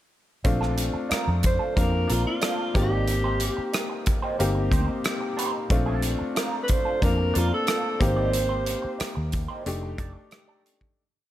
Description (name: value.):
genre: lush 1970s-style soul.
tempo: 91 BPM.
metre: 4/4.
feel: straight.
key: Bb major.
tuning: A4 = 440 Hz.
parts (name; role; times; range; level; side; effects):
warm grand piano; accompaniment; 0.4-11.0 s; A3 to G4; -29 LUFS; left 2 dB; none.
electric guitar through a small old amp; riff; 0.4-10.8 s; D4 to D5; -34 LUFS; right 4 dB; wah.
modern studio drum kit; drums; 0.4-11.0 s; hi-hat, kick drum, rim click; -27 LUFS; equal; none.
vintage muted fingered electric bass; bass; 0.5-10.1 s; F1 to F2; -26 LUFS; equal; none.
warm alto saxophone; melody; 1.5-9.0 s; F4 to C5; -28 LUFS; right 1 dB; none.
room: light reverb, small room ambience.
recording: none.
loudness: -22 LUFS.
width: side -13 dB against mid.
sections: 0.5-11.0 verse.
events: fade-out 8.3-11.0.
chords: 0.5 Bbmaj7; 2.7 Abmaj7; 5.7 Bbmaj7; 8.0 Abmaj7; 9.7 F13.